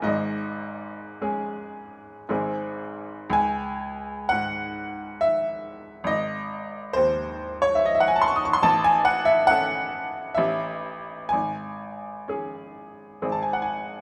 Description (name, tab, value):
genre	classical, romantic nocturne for solo piano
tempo	51-72 BPM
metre	3/4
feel	rubato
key	C# minor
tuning	A4 = 440 Hz
part	bright upright piano	solo	0.0-14.0 s	E1 to D#6	-26 LUFS	equal	none
room	wet stone room reverb, RT60 1.2 s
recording	none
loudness	-25 LUFS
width	mono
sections	0.0-3.3 A section; 3.3-14.0 B section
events	none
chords	0.1 G#sus4; 2.3 G#; 3.3 C#m; 6.1 G#5; 8.7 A; 10.4 A7; 11.3 C#5/G#; 13.2 G#